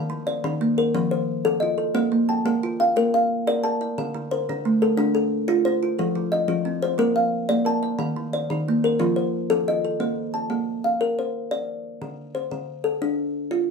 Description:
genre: southern african traditional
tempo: 119 BPM (dotted quarters)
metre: 12/8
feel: straight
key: Bb major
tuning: A4 = 439 Hz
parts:
  - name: kalimba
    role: arpeggios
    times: 0.0-13.7 s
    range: D3 to A5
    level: -22 LUFS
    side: left 1 dB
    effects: none
  - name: kalimba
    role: arpeggios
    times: 0.0-10.3 s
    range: D3 to G5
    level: -26 LUFS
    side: right 2 dB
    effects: none
room: moderate studio ambience, RT60 0.5 s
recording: band playing live in one room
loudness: -21 LUFS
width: side -5 dB against mid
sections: 0.0-10.0 A section; 10.0-13.7 A section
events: none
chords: 0.0 Eb5; 0.9 F; 2.0 Bb; 4.0 Dm; 6.0 F; 7.0 Bb; 8.0 Eb5; 9.0 F; 10.0 Bb; 12.0 D5

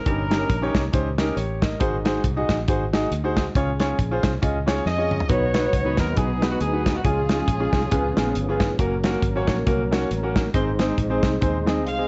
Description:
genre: uptempo gospel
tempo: 137 BPM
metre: 4/4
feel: swing 58% on 8ths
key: Db major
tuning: A4 = 440 Hz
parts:
  - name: bright alto saxophone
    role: melody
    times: 0.0-0.9, 4.9-8.6, 11.9-12.1 s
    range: F4 to F5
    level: -33 LUFS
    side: equal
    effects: none
  - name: dark studio string section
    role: melody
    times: 0.0-0.9, 4.9-8.6, 11.9-12.1 s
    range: Cb4 to F5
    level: -32 LUFS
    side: equal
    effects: none
  - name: clear concert grand piano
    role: accompaniment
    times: 0.1-12.1 s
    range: G2 to Eb5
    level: -27 LUFS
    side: equal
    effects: none
  - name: fingered electric bass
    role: bass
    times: 0.1-12.1 s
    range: Gb1 to F2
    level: -29 LUFS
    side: equal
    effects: none
  - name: modern studio drum kit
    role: drums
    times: 0.1-12.0 s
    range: hi-hat, kick drum, snare drum, toms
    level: -27 LUFS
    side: equal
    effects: none
  - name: percussive tonewheel organ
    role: sustained chords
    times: 5.3-12.1 s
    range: Fb3 to C5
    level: -32 LUFS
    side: equal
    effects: slow rotary speaker, chorus vibrato
room: light reverb, small room ambience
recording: worn, warbling old tape, cassette tape, warbly pitch drift, nothing above 7.9 kHz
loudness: -22 LUFS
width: mono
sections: 0.0-12.1 A section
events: drum fill 4.9-5.3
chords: 0.1 Eb7/G; 1.8 Ab7; 3.6 Db; 5.3 Cb; 7.0 Db; 7.9 Db7; 8.8 Gb; 10.5 Ab

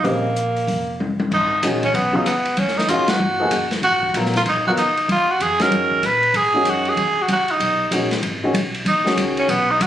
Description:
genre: modal jazz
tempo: 191 BPM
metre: 4/4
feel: swing 63% on 8ths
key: G# dorian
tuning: A4 = 440 Hz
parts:
  - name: growling tenor saxophone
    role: melody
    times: 0.0-9.9 s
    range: Bb3 to B4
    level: -18 LUFS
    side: right 1 dB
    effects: plate reverb
  - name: warm upright piano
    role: accompaniment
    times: 0.0-9.5 s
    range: Db3 to A#4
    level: -22 LUFS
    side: left 2 dB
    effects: none
  - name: upright bass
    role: bass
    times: 0.0-9.9 s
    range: F1 to A#2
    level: -26 LUFS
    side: equal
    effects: none
  - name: open jazz drum kit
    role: drums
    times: 0.0-9.9 s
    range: crash cymbal, hi-hat, kick drum, ride cymbal, snare drum, toms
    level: -25 LUFS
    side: left 1 dB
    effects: none
room: moderate studio reverb, RT60 0.8 s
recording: recorded on a phone in the room, club reverb, compression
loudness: -16 LUFS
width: side -11 dB against mid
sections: 0.0-1.3 A section; 1.3-9.9 B section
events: drum fill 1.0-1.3; band accent 3.0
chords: 0.0 Bbmadd9; 1.3 G#m7

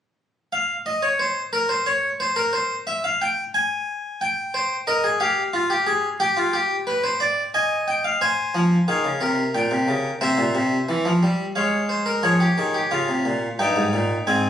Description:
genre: classical, baroque-style 3-part fugue for harpsichord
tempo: 90 BPM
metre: 3/4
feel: straight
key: F minor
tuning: A4 = 439 Hz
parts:
  - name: harpsichord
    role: solo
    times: 0.5-14.5 s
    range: G2 to Ab5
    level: -19 LUFS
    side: equal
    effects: none
room: wet large studio reverb, RT60 1.4 s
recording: recorded on a phone in the room, club reverb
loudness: -19 LUFS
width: side -9 dB against mid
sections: 0.2-12.2 A section; 12.2-14.5 B section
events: none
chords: 0.2 N.C.; 4.2 Cm; 5.5 Fmadd9; 6.2 G7; 7.5 Ebadd11; 8.2 Fm; 9.5 Gdim/Bb; 10.2 C7; 11.6 Fm/Ab; 12.2 Db/F; 12.9 Bbm; 13.6 Eb/G

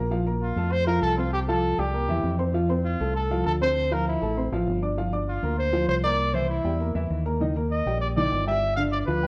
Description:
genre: latin, salsa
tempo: 198 BPM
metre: 4/4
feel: straight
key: F major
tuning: A4 = 439 Hz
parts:
  - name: clear baby grand piano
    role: accompaniment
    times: 0.0-9.3 s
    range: D3 to D6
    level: -30 LUFS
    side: equal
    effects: none
  - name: deep dub fingered electric bass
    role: bass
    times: 0.0-9.3 s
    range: G1 to F2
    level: -30 LUFS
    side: equal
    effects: none
  - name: warm trumpet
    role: melody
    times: 0.4-9.3 s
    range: E4 to F5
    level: -29 LUFS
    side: equal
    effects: plate reverb
room: moderate large studio reverb, RT60 0.9 s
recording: worn, warbling old tape, cassette tape, warbly pitch drift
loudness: -25 LUFS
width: mono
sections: 0.0-2.5 A section; 2.5-9.3 A section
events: none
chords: 0.0 Bb5; 1.3 Csus4; 1.9 C7; 2.5 F6; 3.8 Dm7; 5.0 Gm7; 6.2 C7; 7.4 Ebmaj7; 8.6 G7

